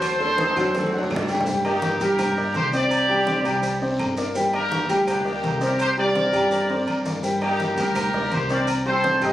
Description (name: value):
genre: latin, salsa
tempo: 166 BPM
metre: 4/4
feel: straight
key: G minor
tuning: A4 = 442 Hz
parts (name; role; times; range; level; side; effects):
- bright trumpet section; melody; 0.0-9.3 s; D4 to Eb5; -23 LUFS; equal; none
- warm grand piano; accompaniment; 0.0-9.3 s; F#3 to G5; -24 LUFS; equal; none
- upright bass; bass; 0.0-9.3 s; G1 to G2; -31 LUFS; equal; none
- bongos and cowbell; percussion; 0.0-9.3 s; none; -36 LUFS; left 2 dB; none
- claves; percussion; 0.0-9.3 s; none; -39 LUFS; left 1 dB; none
- congas; percussion; 0.0-9.3 s; none; -32 LUFS; equal; none
- guiro; percussion; 0.0-9.3 s; none; -39 LUFS; right 1 dB; none
- maracas; percussion; 0.0-9.3 s; none; -40 LUFS; right 1 dB; none
- timbales and agogo bells; percussion; 0.0-9.3 s; none; -33 LUFS; right 1 dB; none
- bright saxophone section; second line; 0.2-1.4 s; C4 to Eb4; -30 LUFS; equal; none
room: moderate studio reverb, RT60 0.5 s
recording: recorded on a phone in the room, studio reverb, compression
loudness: -20 LUFS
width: side -13 dB against mid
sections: 0.0-1.5 A section; 1.5-9.3 B section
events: drum fill 0.4-1.5, 6.5-7.2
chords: 0.0 D7; 1.5 Gm; 2.9 Csus2